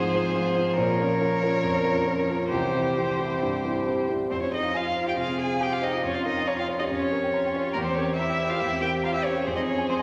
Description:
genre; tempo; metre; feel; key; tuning
quick classical-period movement for piano quartet; 140 BPM; 4/4; rubato; F minor; A4 = 440 Hz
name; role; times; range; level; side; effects
rich violin; melody; 0.0-10.0 s; Bb4 to Ab5; -30 LUFS; equal; none
rich cello; second line; 0.0-10.0 s; E3 to Ab4; -34 LUFS; equal; none
rich violin; second line; 0.0-10.0 s; Db4 to Bb4; -33 LUFS; equal; none
warm baby grand piano; accompaniment; 0.0-10.0 s; C2 to C6; -29 LUFS; equal; none
room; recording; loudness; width
wet scoring stage reverb, RT60 2.0 s; none; -26 LUFS; mono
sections
0.0-4.3 A section; 4.3-10.0 B section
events
none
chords
0.0 Fm/Ab; 0.8 Bbm; 2.5 C; 4.3 Fm; 6.0 Gm7b5/F; 7.7 C7/E; 9.5 Fm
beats
0.35 | 0.77 1.20 1.63 2.06 | 2.51 2.97 3.42 3.87 | 4.31 4.75 5.17 5.60 | 6.04 6.47 6.89 7.32 | 7.75 8.17 8.60 9.03 | 9.46 9.88

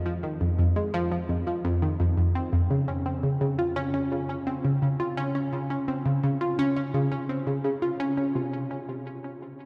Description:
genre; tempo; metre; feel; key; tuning
ambient; 85 BPM; 4/4; straight; unclear; A4 = 440 Hz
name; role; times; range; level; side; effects
analog pluck; solo; 0.1-8.7 s; F2 to F4; -27 LUFS; equal; chorus, delay
room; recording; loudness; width
wet cathedral reverb, RT60 5.3 s; in a vast, echoing space; -27 LUFS; mono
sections
0.0-2.7 A section; 2.7-8.4 B section; 8.4-9.7 C section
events
none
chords
none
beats
0.59 1.29 2.00 | 2.71 3.41 4.12 4.82 | 5.53 6.23 6.94 7.65 | 8.35

